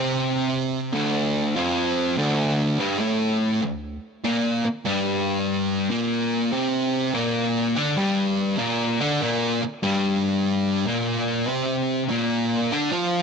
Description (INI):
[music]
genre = rock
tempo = 97 BPM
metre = 4/4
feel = swing 67% on 8ths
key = unclear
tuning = A4 = 440 Hz
[part]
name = fuzz guitar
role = solo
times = 0.0-13.2 s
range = D2 to F4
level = -21 LUFS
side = equal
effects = distortion
[sound]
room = light reverb, digital ambience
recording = none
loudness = -21 LUFS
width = side -5 dB against mid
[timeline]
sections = 0.0-13.2 A section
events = none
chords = 0.0 Dm; 4.2 Bb5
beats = 0.52 1.14 | 1.76 2.38 3.00 3.62 | 4.25 4.87 5.49 6.11 | 6.73 7.35 7.97 8.59 | 9.21 9.83 10.45 11.07 | 11.69 12.30 12.92